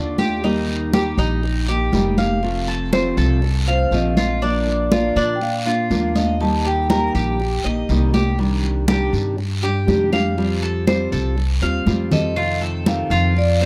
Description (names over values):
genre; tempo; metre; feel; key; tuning
latin, Cuban son and guajira; 121 BPM; 4/4; straight; unclear; A4 = 439 Hz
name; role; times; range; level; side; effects
fingerpicked steel-string acoustic guitar; accompaniment; 0.0-13.7 s; C3 to G4; -25 LUFS; equal; none
Cuban tres; arpeggios; 0.0-13.7 s; D4 to F5; -27 LUFS; equal; none
upright bass; bass; 0.0-13.7 s; F1 to Bb2; -24 LUFS; equal; none
congas; percussion; 0.2-13.7 s; none; -24 LUFS; equal; none
guiro; percussion; 0.2-13.7 s; none; -36 LUFS; equal; none
vibraphone with medium hard mallets; melody; 3.7-7.6, 12.1-13.7 s; C5 to A5; -26 LUFS; equal; none
room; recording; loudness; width
small room ambience; dry, close 1970s-style studio recording; -19 LUFS; mono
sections
0.0-12.4 A section; 12.4-13.7 B section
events
drum fill 11.9-12.4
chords
0.4 Eb; 2.4 F; 4.4 Bb; 6.4 Eb; 8.4 Cmadd9; 10.4 Fadd9; 12.4 F7